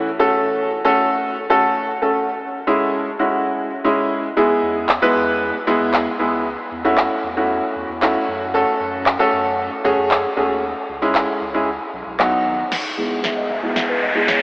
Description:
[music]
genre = dance-pop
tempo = 115 BPM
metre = 4/4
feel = straight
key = E major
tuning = A4 = 440 Hz
[part]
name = clear concert grand piano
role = accompaniment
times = 0.0-14.4 s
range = F#3 to B4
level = -17 LUFS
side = equal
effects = low-pass filter
[part]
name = saturated sub bass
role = bass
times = 4.6-14.4 s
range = E1 to F#2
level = -36 LUFS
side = equal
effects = none
[part]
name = house drum kit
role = drums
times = 4.9-14.4 s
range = crash cymbal, handclaps, snare drum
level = -23 LUFS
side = equal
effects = none
[part]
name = riser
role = sound effects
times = 13.2-14.4 s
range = none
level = -20 LUFS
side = equal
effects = none
[part]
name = mallet-like synth pluck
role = melody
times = 13.0-14.4 s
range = B4 to F#5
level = -25 LUFS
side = left 1 dB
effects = chorus, low-pass filter
[sound]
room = wet huge ambient reverb, RT60 7.8 s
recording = dreamy mix soaked in reverb, AM radio sound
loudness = -16 LUFS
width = side -26 dB against mid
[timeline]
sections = 0.0-12.7 A section; 12.7-14.4 B section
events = build-up 12.7-14.4; drum fill 12.7-14.4; filter sweep 12.7-14.4; riser 13.2-14.4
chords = 0.2 F#m; 2.3 C#m; 4.4 E; 6.5 A6; 8.5 F#m; 10.6 C#m; 11.7 B; 12.7 E

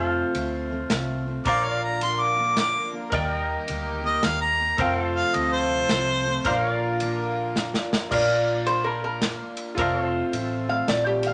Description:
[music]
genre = honky-tonk and classic country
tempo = 108 BPM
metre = 3/4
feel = swing 63% on 8ths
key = Bb major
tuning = A4 = 440 Hz
[part]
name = picked steel-string acoustic guitar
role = accompaniment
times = 0.0-11.3 s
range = F2 to G4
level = -34 LUFS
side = equal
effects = none
[part]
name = pedal steel guitar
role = sustained chords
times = 0.0-11.3 s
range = A4 to G5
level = -32 LUFS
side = equal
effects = none
[part]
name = vintage muted fingered electric bass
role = bass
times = 0.0-11.3 s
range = F1 to F2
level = -34 LUFS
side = equal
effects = none
[part]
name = natural country drum kit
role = drums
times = 0.3-11.3 s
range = crash cymbal, kick drum, ride cymbal, snare drum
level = -32 LUFS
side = equal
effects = none
[part]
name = bright concert grand piano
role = accompaniment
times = 1.4-11.3 s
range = F4 to G5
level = -34 LUFS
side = equal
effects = none
[part]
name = rich chamber string section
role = sustained chords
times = 1.4-8.1 s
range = C3 to Bb4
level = -39 LUFS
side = equal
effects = none
[part]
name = clear harmonica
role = second line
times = 1.5-6.6 s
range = C5 to D6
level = -26 LUFS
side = equal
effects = none
[part]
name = lap resonator guitar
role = melody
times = 8.1-11.3 s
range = G4 to F5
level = -26 LUFS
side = equal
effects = none
[sound]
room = moderate studio reverb, RT60 0.7 s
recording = nothing above 10.3 kHz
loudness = -24 LUFS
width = mono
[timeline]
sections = 0.0-8.1 A section; 8.1-11.3 A section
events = harmonica solo 0.0-8.1; drum fill 7.6-8.1; resonator guitar played with a steel bar solo 8.1-11.3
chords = 0.0 F; 1.5 Bb; 3.1 Eb; 4.8 F; 6.5 Bb; 9.8 F

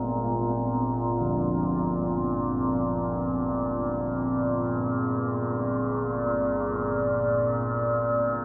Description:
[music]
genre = dark ambient drone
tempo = free time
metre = none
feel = none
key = unclear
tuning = A4 = 441 Hz
[part]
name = dark analog pad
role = sustained chords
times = 0.0-8.4 s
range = C4 to D5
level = -30 LUFS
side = equal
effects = chorus, phaser
[part]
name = carillon bells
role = arpeggios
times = 0.0-7.4 s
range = D3 to Ab3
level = -37 LUFS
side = equal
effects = analog delay
[part]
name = overtone-sweeping drone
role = drone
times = 0.0-8.4 s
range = G1 to Bb2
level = -31 LUFS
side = equal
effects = chorus, built-in reverb
[sound]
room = wet spring reverb, RT60 2.4 s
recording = echo-heavy mix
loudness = -27 LUFS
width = mono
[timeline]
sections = 0.0-8.4 A section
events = none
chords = 0.0 Bb

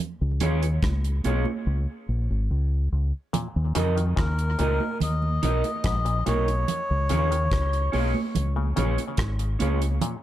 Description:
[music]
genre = dub reggae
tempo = 72 BPM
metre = 4/4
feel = straight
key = unclear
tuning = A4 = 440 Hz
[part]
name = deep dub fingered electric bass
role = bass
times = 0.2-10.0 s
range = Ab1 to F2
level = -24 LUFS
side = equal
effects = none
[part]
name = electric guitar through a small old amp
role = accompaniment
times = 0.4-9.8 s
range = Db4 to Eb5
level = -30 LUFS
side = right 2 dB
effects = tape echo
[part]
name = damped 70s drum kit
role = drums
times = 0.4-10.2 s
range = hi-hat, kick drum, rim click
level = -30 LUFS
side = equal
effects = none
[part]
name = congas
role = percussion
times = 0.4-10.2 s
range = none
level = -32 LUFS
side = right 6 dB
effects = tape echo
[part]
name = muted clav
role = arpeggios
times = 3.3-10.2 s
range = Ab2 to Eb3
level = -34 LUFS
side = left 5 dB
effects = overdrive, tape echo
[part]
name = melodica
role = melody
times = 4.2-7.9 s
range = Bb4 to Eb5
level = -29 LUFS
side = left 2 dB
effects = tape echo
[sound]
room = light reverb, small room ambience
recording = dark, warm production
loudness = -22 LUFS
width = side -13 dB against mid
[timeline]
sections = 0.0-10.2 A section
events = break 0.0-3.3, 10.0; drums muted 1.7-3.3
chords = 0.0 Db5; 3.3 Ebm; 6.7 Db

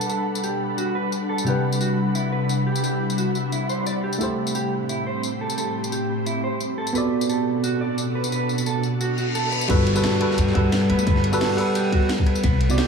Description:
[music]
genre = liquid drum and bass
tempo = 175 BPM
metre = 4/4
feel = straight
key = G major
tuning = A4 = 440 Hz
[part]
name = tine electric piano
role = accompaniment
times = 0.0-12.9 s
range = C3 to F#5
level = -24 LUFS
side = equal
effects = dub echo
[part]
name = ethereal airy pad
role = sustained chords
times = 0.0-12.9 s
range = A2 to B5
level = -26 LUFS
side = equal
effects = ensemble chorus, built-in reverb, sidechain pumping
[part]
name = mellow electric guitar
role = arpeggios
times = 0.0-12.9 s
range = E4 to D5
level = -29 LUFS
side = right 4 dB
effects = tape echo
[part]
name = garage drum kit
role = drums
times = 0.0-12.9 s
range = hi-hat, rim click, snare drum, tambourine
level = -31 LUFS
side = left 1 dB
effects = none
[part]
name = reverse cymbal and downlifter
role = sound effects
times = 9.1-12.4 s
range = none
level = -31 LUFS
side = left 2 dB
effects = none
[part]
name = upright bass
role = bass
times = 9.7-12.8 s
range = G1 to G2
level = -22 LUFS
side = equal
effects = none
[part]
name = crunchy breakbeat drum kit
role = drums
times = 9.7-12.9 s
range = hi-hat, ride cymbal, snare drum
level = -33 LUFS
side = right 1 dB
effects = high-pass filter on cymbals, high-pass filter on hats, high-pass filter on snare, high-pass filter on room
[part]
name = electronic kick drum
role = drums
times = 9.7-12.5 s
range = none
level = -21 LUFS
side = equal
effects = none
[sound]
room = light reverb, small room ambience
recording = none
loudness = -20 LUFS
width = side -5 dB against mid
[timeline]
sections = 0.0-9.7 A section; 9.7-12.9 B section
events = filter sweep on tine electric piano 0.0-9.7; reverse cymbal 9.1-9.7; drop 9.7-12.9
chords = 0.0 Gmaj9; 1.5 Cmaj9#11; 4.2 Am7; 7.0 Bm7; 9.7 Gmaj9

